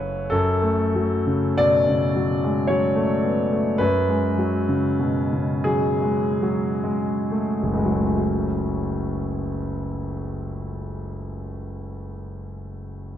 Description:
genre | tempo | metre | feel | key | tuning
classical, romantic nocturne for solo piano | 30-56 BPM | 3/4 | rubato | F# minor | A4 = 440 Hz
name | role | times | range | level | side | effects
bright concert grand piano | solo | 0.0-13.2 s | F#1 to F#5 | -21 LUFS | equal | none
room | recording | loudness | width
moderate concert hall reverb, RT60 2.3 s | dark, warm production | -20 LUFS | side -10 dB against mid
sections
0.3-8.2 A section; 8.2-12.6 B section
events
slowing down 0.0-8.2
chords
0.3 F#m

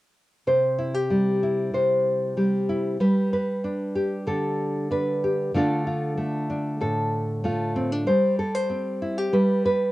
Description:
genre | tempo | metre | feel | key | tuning
folk | 95 BPM | 4/4 | straight | C major | A4 = 440 Hz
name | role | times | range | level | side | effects
nylon-string guitar | accompaniment | 0.5-9.9 s | A2 to C5 | -22 LUFS | equal | cassette tape
room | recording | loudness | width
wet booth ambience, RT60 0.2 s | home recording on cassette | -22 LUFS | side -17 dB against mid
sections
0.5-9.9 A section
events
none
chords
0.5 C; 3.0 G; 5.5 Dm; 8.1 Gsus4; 9.3 G

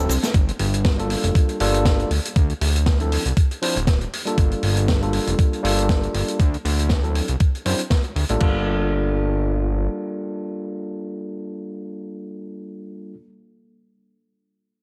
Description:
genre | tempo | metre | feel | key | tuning
nu-disco, nu disco | 119 BPM | 4/4 | swing 55% on 16ths | G dorian | A4 = 441 Hz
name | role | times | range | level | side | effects
overdriven tine electric piano | accompaniment | 0.0-13.2 s | F3 to C5 | -28 LUFS | equal | low-pass filter, slapback echo
fat analog bass | bass | 0.0-9.9 s | D1 to F#2 | -24 LUFS | equal | sidechain pumping
vintage drum kit | drums | 0.1-8.5 s | crash cymbal, hi-hat, shaker, snare drum | -29 LUFS | equal | none
electronic kick drum | drums | 0.3-8.5 s | none | -20 LUFS | equal | none
room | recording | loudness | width
studio reverb | none | -21 LUFS | mono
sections
0.3-8.4 A section; 8.4-12.4 B section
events
drum fill 0.0-0.3; filter sweep on tine electric piano 0.3-8.4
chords
0.3 Gm7; 2.1 Dm7; 4.1 Gm7; 6.4 D7; 8.4 Gm7

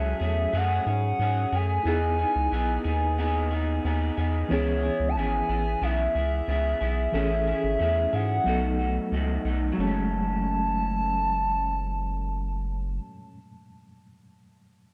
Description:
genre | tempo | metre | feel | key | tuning
indie pop, bedroom pop | 91 BPM | 4/4 | straight | F# dorian | A4 = 440 Hz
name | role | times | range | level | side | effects
hollow clarinet-like synth lead | melody | 0.0-13.0 s | C#5 to A5 | -31 LUFS | equal | lush chorus, tape echo
electric guitar through a small old amp | accompaniment | 0.0-13.4 s | B2 to G#4 | -35 LUFS | equal | lush chorus, vibrato effect
reed electric piano | accompaniment | 0.0-14.9 s | E3 to A4 | -34 LUFS | equal | fast tremolo, cassette tape
round analog bass | bass | 0.0-13.0 s | F#1 to G#2 | -30 LUFS | equal | none
room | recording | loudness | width
light reverb, digital ambience | none | -26 LUFS | mono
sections
0.0-9.8 A section; 9.8-12.4 B section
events
none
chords
0.0 F#madd9; 1.9 Emaj7; 4.5 C#m7; 7.1 Amaj7; 8.5 B7; 9.8 F#madd9

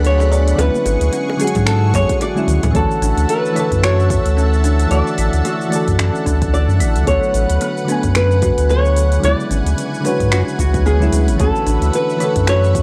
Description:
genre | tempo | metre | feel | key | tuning
sunset chillout | 111 BPM | 4/4 | swing 57% on 16ths | D lydian | A4 = 439 Hz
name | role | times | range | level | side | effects
flamenco guitar | melody | 0.0-12.8 s | F#4 to D5 | -22 LUFS | equal | analog delay
soft electric-piano-like synth keys | accompaniment | 0.0-12.8 s | C#3 to G#5 | -24 LUFS | equal | chorus, tape echo
lush unison pad | sustained chords | 0.0-12.8 s | A3 to C#6 | -29 LUFS | equal | chorus
kalimba | arpeggios | 0.0-12.6 s | B3 to D5 | -29 LUFS | equal | tape echo
warm sub bass | bass | 0.0-12.8 s | G#1 to G#2 | -17 LUFS | equal | none
smooth R&B drum kit | drums | 0.0-12.8 s | cabasa, finger snaps, hi-hat, toms | -28 LUFS | equal | overdrive, small room ambience
bongos and congas | percussion | 0.2-2.7 s | none | -27 LUFS | equal | none
electronic kick drum | drums | 1.6-12.8 s | none | -25 LUFS | equal | small room ambience
room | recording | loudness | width
digital ambience | dry, gritty hardware recording, cassette tape | -16 LUFS | mono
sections
0.0-2.8 A section; 2.8-12.8 A section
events
drum fill 2.3-2.8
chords
0.0 Bm7; 0.6 E13; 2.8 Dmaj9; 7.1 Bm7; 9.2 E13; 11.4 Dmaj9

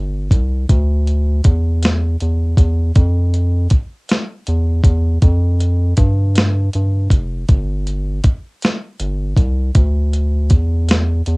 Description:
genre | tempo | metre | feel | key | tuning
slow six-eight R&B | 53 BPM (dotted quarters) | 6/8 | straight | D minor | A4 = 439 Hz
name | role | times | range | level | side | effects
round analog bass | bass | 0.0-11.4 s | F1 to G2 | -15 LUFS | equal | none
dusty soul sampler-style drum kit | drums | 0.3-11.4 s | hi-hat, kick drum, snare drum | -13 LUFS | equal | cassette tape
room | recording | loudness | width
little or no reverb | home recording on cassette, lossy compression artefacts | -14 LUFS | side -33 dB against mid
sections
0.0-11.4 A section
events
none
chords
none

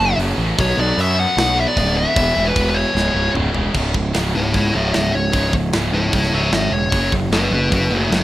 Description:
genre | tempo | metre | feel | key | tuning
heavy metal | 151 BPM | 4/4 | straight | C# phrygian, C# minor from 3.7 s | A4 = 439 Hz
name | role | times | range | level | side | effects
high-gain lead guitar | melody | 0.0-8.2 s | A3 to A5 | -19 LUFS | left 1 dB | distortion, tape echo
heavy high-gain guitar | riff | 0.0-8.2 s | C#2 to B3 | -23 LUFS | right 1 dB | distortion
fuzz picked electric bass | bass | 0.0-8.2 s | C#1 to F#2 | -20 LUFS | equal | overdrive
tight metal drum kit | drums | 0.2-8.2 s | crash cymbal, hi-hat, kick drum, snare drum, toms | -23 LUFS | equal | none
room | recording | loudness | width
small room reverb | rough home demo mix | -15 LUFS | side -15 dB against mid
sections
0.0-3.7 A section; 3.7-8.2 B section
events
half time 0.0-3.7; drum fill 3.0-3.7; lead electric guitar solo 3.7-8.2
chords
0.0 F#m; 0.6 Bm; 2.2 E5; 3.0 C#m; 6.9 F#m

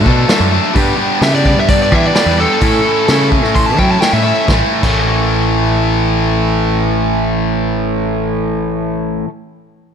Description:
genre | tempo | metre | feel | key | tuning
classic rock | 129 BPM | 4/4 | straight | A mixolydian | A4 = 440 Hz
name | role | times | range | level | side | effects
distorted electric guitar | riff | 0.0-9.3 s | A2 to A4 | -17 LUFS | left 13 dB | overdrive
distorted electric guitar | riff | 0.0-9.3 s | A2 to A4 | -18 LUFS | right 13 dB | overdrive
growling picked electric bass | bass | 0.0-9.2 s | A1 to F#3 | -17 LUFS | equal | overdrive
vintage drum kit | drums | 0.1-5.0 s | crash cymbal, hi-hat, kick drum, snare drum | -16 LUFS | equal | none
biting lead guitar | melody | 1.2-4.5 s | A4 to C6 | -16 LUFS | equal | overdrive, slapback echo
room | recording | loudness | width
light reverb, small room reverb | none | -11 LUFS | side -7 dB against mid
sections
0.0-4.5 A section; 4.5-8.2 B section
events
lead electric guitar solo 0.0-4.5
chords
0.0 D; 0.7 G; 2.6 A; 4.5 A5

